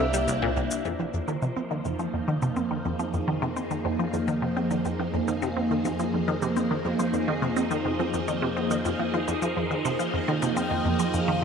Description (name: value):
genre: ambient, sequencer-driven space music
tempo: 105 BPM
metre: 4/4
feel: straight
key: F minor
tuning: A4 = 438 Hz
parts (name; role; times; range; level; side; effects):
- mellow horn-like synth lead; melody; 0.0-0.6, 10.6-11.4 s; E5 to G5; -33 LUFS; left 1 dB; lush chorus, tape echo
- phased string machine; sustained chords; 0.0-11.4 s; F3 to C5; -27 LUFS; equal; ensemble chorus, phaser
- resonant blip pluck; riff; 0.0-11.4 s; C2 to C4; -28 LUFS; equal; phaser, tape echo
- analog drone; bass; 0.0-11.4 s; C2 to F2; -38 LUFS; equal; chorus, tube saturation
- shaker and bongos; percussion; 0.1-11.3 s; none; -38 LUFS; left 4 dB; tape echo
- bubbling stepped-filter texture; texture; 0.9-11.4 s; Eb5; -44 LUFS; right 5 dB; none
room: wet spring reverb, RT60 2.7 s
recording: echo-heavy mix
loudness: -24 LUFS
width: side -6 dB against mid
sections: 0.8-11.4 A section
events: fade-in on synth drone 0.8-11.4; fade-in on drum 0.8-11.4; filter sweep on synth arpeggio sound 0.8-11.4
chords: 0.0 C7; 0.8 Fm7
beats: 0.28 | 0.85 1.42 1.99 2.56 | 3.14 3.71 4.28 4.85 | 5.42 5.99 6.56 7.14 | 7.71 8.28 8.85 9.42 | 9.99 10.56 11.14